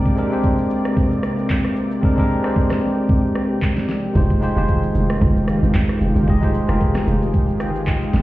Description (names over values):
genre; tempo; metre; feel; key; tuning
amapiano; 113 BPM; 4/4; swing 55% on 16ths; unclear; A4 = 440 Hz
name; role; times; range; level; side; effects
bell-like tine electric piano; accompaniment; 0.0-8.2 s; Ab3 to Bb5; -21 LUFS; left 1 dB; none
lush unison pad; sustained chords; 0.0-8.2 s; C3 to D5; -25 LUFS; right 1 dB; chorus, sidechain pumping
smooth R&B drum kit; drums; 0.1-8.2 s; handclaps, kick drum, rim click, shaker, snare drum; -20 LUFS; equal; none
hollow log drum bass; bass; 4.2-8.2 s; F1 to Ab1; -20 LUFS; equal; none
room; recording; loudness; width
little or no reverb; heard muffled through a wall, stone room reverb, EQ; -16 LUFS; side -16 dB against mid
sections
0.0-8.2 A section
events
hi-hats muted 2.0-4.2; tine electric piano fill 7.3-8.2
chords
0.0 Abmaj9#11; 4.2 Fm9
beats
0.44 0.97 1.50 | 2.03 2.56 3.09 3.62 | 4.15 4.68 5.22 5.75 | 6.28 6.81 7.34 7.87